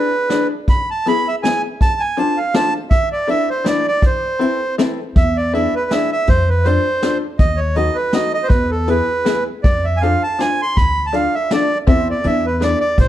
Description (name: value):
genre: musette waltz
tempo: 161 BPM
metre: 3/4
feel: swing 54% on 8ths, rubato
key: unclear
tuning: A4 = 440 Hz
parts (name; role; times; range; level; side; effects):
- accordion; melody; 0.0-13.1 s; A4 to C6; -18 LUFS; right 2 dB; none
- open-back banjo; accompaniment; 0.0-12.8 s; B3 to D5; -20 LUFS; left 4 dB; none
- vintage brush drum kit; drums; 0.3-13.1 s; hi-hat, kick drum, snare drum; -17 LUFS; equal; none
- upright bass; bass; 5.2-13.1 s; A1 to F2; -19 LUFS; equal; none
room: light reverb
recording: dark, warm production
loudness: -14 LUFS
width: side -12 dB against mid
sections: 0.0-13.1 A section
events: none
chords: 0.0 E7; 0.7 E; 1.8 Dm7; 2.9 E7sus4; 3.7 E7; 4.0 Amadd9; 5.2 E7; 6.3 F6; 7.4 B7/D#; 8.5 E; 9.7 F6; 10.8 Dm; 11.9 Am/E; 12.2 E7